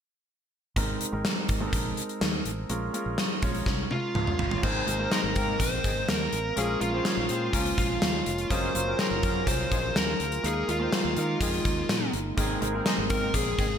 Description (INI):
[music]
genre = 1980s-style pop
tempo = 124 BPM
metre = 4/4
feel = straight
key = Ab mixolydian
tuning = A4 = 438 Hz
[part]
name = warm grand piano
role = accompaniment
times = 0.8-13.8 s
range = Gb3 to Db5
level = -33 LUFS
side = right 2 dB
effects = none
[part]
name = fingered electric bass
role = bass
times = 0.8-13.8 s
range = F1 to Eb3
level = -33 LUFS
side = equal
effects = none
[part]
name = gated 80s drum kit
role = drums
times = 0.8-13.7 s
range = crash cymbal, hi-hat, kick drum, snare drum, toms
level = -28 LUFS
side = equal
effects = gated reverb
[part]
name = fuzz lead guitar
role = melody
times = 3.9-13.8 s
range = F4 to C5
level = -30 LUFS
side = equal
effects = distortion
[part]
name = chorused pulse-width pad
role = sustained chords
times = 4.6-13.8 s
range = Gb3 to Bb4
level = -37 LUFS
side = left 1 dB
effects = none
[part]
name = mellow horn section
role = stabs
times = 4.6-13.7 s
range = Eb3 to Db5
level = -36 LUFS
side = left 3 dB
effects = ping-pong delay
[sound]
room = moderate lush hall reverb, RT60 1.7 s, studio reverb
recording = bright 1980s-style digital production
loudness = -25 LUFS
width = side -8 dB against mid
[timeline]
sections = 0.8-4.6 A section; 4.6-13.8 B section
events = drum fill 3.7-4.6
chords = 0.8 Abadd9; 2.7 Bbm7; 4.6 Abadd9; 6.6 Bbm7; 8.5 Gbmaj7; 10.4 Ebsus4; 12.4 Abadd9